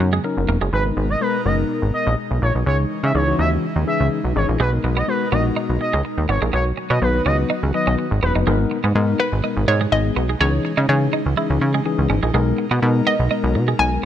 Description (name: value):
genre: pop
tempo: 124 BPM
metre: 4/4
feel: straight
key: G# minor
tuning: A4 = 440 Hz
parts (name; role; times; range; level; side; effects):
- hollow square pluck; melody; 0.0-0.2, 9.2-14.1 s; B4 to G#5; -22 LUFS; equal; chorus, digital delay
- mellow tine electric piano; accompaniment; 0.0-14.1 s; E3 to B4; -24 LUFS; left 7 dB; none
- airy breathy pad; sustained chords; 0.0-14.1 s; B2 to A#4; -27 LUFS; right 1 dB; chorus
- twelve-string electric guitar; riff; 0.0-0.7, 4.6-13.8 s; G#3 to E4; -26 LUFS; right 7 dB; wide subtle chorus
- plucky analog bass; bass; 0.0-14.0 s; E1 to C#3; -19 LUFS; equal; none
- expressive portamento lead; melody; 0.7-8.3 s; B4 to E5; -24 LUFS; right 1 dB; chorus, digital delay
room: little or no reverb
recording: none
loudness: -17 LUFS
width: side -10 dB against mid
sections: 0.7-8.5 A section; 8.5-14.1 B section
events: none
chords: 0.0 F#6; 0.7 G#madd9; 2.7 C#madd9; 4.6 G#madd9; 6.5 B; 8.5 G#madd9; 10.4 C#madd9; 12.3 G#madd9/B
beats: 0.24 | 0.73 1.21 1.70 2.18 | 2.66 3.15 3.63 4.12 | 4.60 5.08 5.57 6.05 | 6.53 7.02 7.50 7.99 | 8.47 8.95 9.44 9.92 | 10.40 10.89 11.37 11.86 | 12.34 12.82 13.31 13.79